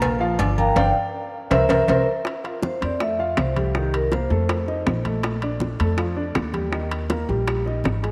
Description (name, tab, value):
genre	Afro-Cuban jazz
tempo	161 BPM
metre	4/4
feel	straight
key	F major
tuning	A4 = 440 Hz
part	warm concert grand piano	accompaniment	0.0-8.1 s	Eb3 to D6	-29 LUFS	equal	none
part	upright bass	bass	0.0-8.1 s	G1 to F2	-27 LUFS	equal	none
part	agogo bells and timbales	percussion	0.0-8.1 s	none	-33 LUFS	equal	none
part	congas	percussion	0.0-8.0 s	none	-33 LUFS	equal	none
part	cowbell and bongos	percussion	0.0-8.1 s	none	-31 LUFS	equal	none
part	vibraphone with medium mallets	melody	0.6-5.0 s	G4 to Bb5	-26 LUFS	equal	none
room	moderate plate reverb, RT60 3.2 s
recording	none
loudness	-22 LUFS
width	mono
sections	0.0-2.3 A section; 2.3-8.1 B section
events	vibraphone solo 0.0-2.3; band accent 0.8-2.3; drum fill 1.1-2.3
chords	0.0 Bb6; 0.8 G5; 1.5 C7; 2.3 Fmaj7; 3.7 Cm7; 4.5 F7; 5.2 Bbmaj7; 6.7 Eb